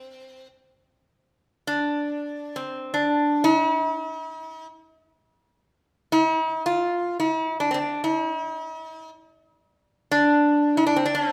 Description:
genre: Arabic maqam ensemble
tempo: free time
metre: none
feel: none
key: unclear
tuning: A4 = 442 Hz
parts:
  - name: metal-body resonator slide guitar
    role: solo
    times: 0.0-11.3 s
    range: C4 to F4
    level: -24 LUFS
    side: equal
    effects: none
room: wet recital hall reverb, RT60 1.5 s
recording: none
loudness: -23 LUFS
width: mono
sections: 0.0-11.3 A section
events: none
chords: none

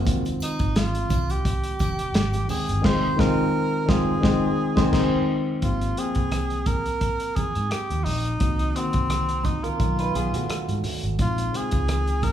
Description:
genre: lush 1970s-style soul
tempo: 86 BPM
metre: 4/4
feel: swing 54% on 16ths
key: F minor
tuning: A4 = 437 Hz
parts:
  - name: barky reed electric piano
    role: accompaniment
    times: 0.0-12.3 s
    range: Db3 to G5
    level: -27 LUFS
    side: left 2 dB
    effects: overdrive
  - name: electric guitar through a small old amp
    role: riff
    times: 0.0-5.2, 9.6-11.2 s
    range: Ab3 to C5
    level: -30 LUFS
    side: right 4 dB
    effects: none
  - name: vintage muted fingered electric bass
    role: bass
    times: 0.0-12.3 s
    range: F1 to B2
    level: -28 LUFS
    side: equal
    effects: none
  - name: warm soul drum kit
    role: drums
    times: 0.1-12.3 s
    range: crash cymbal, hi-hat, kick drum, rim click, snare drum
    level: -26 LUFS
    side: equal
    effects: none
  - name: congas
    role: percussion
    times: 0.1-12.3 s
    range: none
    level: -35 LUFS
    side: right 4 dB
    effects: none
  - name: triangle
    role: percussion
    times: 0.1-2.8 s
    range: none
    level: -44 LUFS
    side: right 2 dB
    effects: none
  - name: breathy tenor saxophone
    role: melody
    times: 0.4-12.3 s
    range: C4 to C5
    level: -28 LUFS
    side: right 1 dB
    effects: none
room: wet large studio reverb, RT60 1.2 s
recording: band playing live in one room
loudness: -21 LUFS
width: side -10 dB against mid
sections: 0.0-5.6 A section; 5.6-12.3 B section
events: band accent 2.8-5.6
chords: 0.1 Fm7; 5.6 Abmaj13; 8.4 Cm7b5; 9.8 B7#11; 11.2 Bbm11

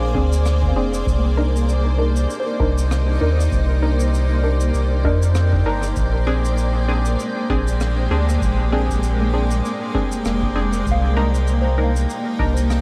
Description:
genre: ambient dub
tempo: 98 BPM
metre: 4/4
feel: swing 57% on 16ths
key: C minor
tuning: A4 = 440 Hz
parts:
  - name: granular cloud pad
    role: sustained chords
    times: 0.0-12.8 s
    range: Ab3 to D5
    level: -27 LUFS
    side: equal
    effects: built-in reverb
  - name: kalimba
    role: arpeggios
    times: 0.0-3.8, 8.7-12.8 s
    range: Bb3 to F5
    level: -34 LUFS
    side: equal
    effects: none
  - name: warm sub bass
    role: bass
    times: 0.0-12.8 s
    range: F1 to F2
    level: -21 LUFS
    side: equal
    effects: none
  - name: filtered dub chord stab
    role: stabs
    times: 0.1-12.6 s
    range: C4 to Bb4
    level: -28 LUFS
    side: equal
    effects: lush chorus, dub echo
  - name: electronic kick drum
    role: drums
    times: 0.1-12.5 s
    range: none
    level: -27 LUFS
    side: equal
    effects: none
  - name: shaker and rim click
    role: drums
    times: 0.3-12.8 s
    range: none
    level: -36 LUFS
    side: equal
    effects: dub echo
  - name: drifting glass-harmonics texture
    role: texture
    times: 1.8-12.8 s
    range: G4 to G5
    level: -36 LUFS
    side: equal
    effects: chorus, built-in reverb
room: light reverb, studio reverb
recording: none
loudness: -19 LUFS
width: mono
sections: 0.0-12.8 A section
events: none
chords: 0.0 Bb9; 1.1 Cm9; 6.0 Bb9; 10.9 Cm9

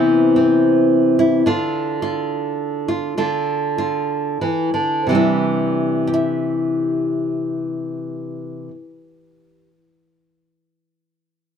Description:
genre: folk, solo fingerstyle acoustic guitar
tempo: 88-108 BPM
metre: 3/4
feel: straight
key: C major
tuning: A4 = 438 Hz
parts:
  - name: nylon-string guitar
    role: solo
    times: 0.0-9.8 s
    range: C3 to E5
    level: -17 LUFS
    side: equal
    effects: none
room: light reverb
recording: dark, warm production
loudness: -16 LUFS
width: side -8 dB against mid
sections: 0.0-5.1 A section; 5.1-9.1 B section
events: slowing down 1.5-5.1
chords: 0.0 Cmaj7; 1.5 Dm; 5.1 Cadd9

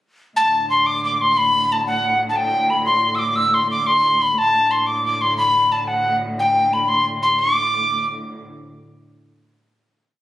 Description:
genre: celtic folk, Celtic jig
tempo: 120 BPM (dotted quarters)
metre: 6/8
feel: straight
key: D mixolydian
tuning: A4 = 441 Hz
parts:
  - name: tin whistle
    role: melody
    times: 0.4-8.1 s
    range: F#5 to E6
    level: -16 LUFS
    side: left 1 dB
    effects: none
  - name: rich studio string section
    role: drone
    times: 0.4-8.4 s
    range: D2 to A2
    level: -29 LUFS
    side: equal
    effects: none
room: wet recital hall reverb, RT60 1.4 s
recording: recorded on a phone in the room, club reverb, compression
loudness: -16 LUFS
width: side -14 dB against mid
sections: 0.4-8.4 A section; 8.4-9.4 final hit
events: none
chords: 0.4 D5; 8.4 N.C.

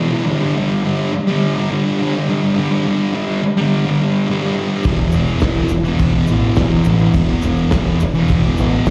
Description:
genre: garage rock duo or trio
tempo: 104 BPM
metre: 4/4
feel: straight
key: E minor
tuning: A4 = 443 Hz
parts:
  - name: thick fuzz guitar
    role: riff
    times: 0.0-8.9 s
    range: E2 to G3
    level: -18 LUFS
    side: equal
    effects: distortion
  - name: tube shaker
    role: percussion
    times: 4.8-8.9 s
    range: none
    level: -46 LUFS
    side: equal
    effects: none
  - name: growling picked electric bass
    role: bass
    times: 4.9-8.9 s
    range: E1 to A1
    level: -20 LUFS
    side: equal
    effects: overdrive
  - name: cloth-damped thuddy drum kit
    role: drums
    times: 4.9-8.9 s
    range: hi-hat, kick drum, snare drum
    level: -22 LUFS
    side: equal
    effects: none
room: light reverb, studio ambience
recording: live gig heard through the venue's PA, recital hall reverb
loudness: -16 LUFS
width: mono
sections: 0.0-8.9 A section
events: none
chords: 0.3 G5; 4.9 E5

